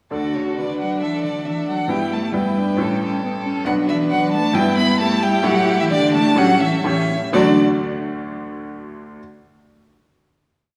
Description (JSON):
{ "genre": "quick classical-period movement for piano quintet", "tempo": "133 BPM", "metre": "4/4", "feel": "rubato", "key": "D major", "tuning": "A4 = 444 Hz", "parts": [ { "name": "rich violin", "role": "melody", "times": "0.1-7.6 s", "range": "C#5 to B5", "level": "-25 LUFS", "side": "equal", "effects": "none" }, { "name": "rich cello", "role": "second line", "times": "0.1-7.6 s", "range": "C#3 to D4", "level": "-25 LUFS", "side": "equal", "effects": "none" }, { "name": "rich violin", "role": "second line", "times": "0.1-7.6 s", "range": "D4 to C#5", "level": "-30 LUFS", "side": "equal", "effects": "none" }, { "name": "bright grand piano", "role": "accompaniment", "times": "0.1-9.2 s", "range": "A1 to D5", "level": "-25 LUFS", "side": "equal", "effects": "none" }, { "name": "warm viola", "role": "accompaniment", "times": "0.1-7.6 s", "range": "F#3 to F#4", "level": "-25 LUFS", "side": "equal", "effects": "none" } ], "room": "wet concert hall reverb, RT60 1.9 s", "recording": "none", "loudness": "-19 LUFS", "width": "mono", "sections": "0.1-7.3 A section; 7.3-9.2 final chord", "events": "none", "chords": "0.1 D; 1.9 Em/G; 2.8 A9; 3.7 Bm; 4.6 Em/G; 5.5 A7sus4; 6.4 A7; 7.3 D" }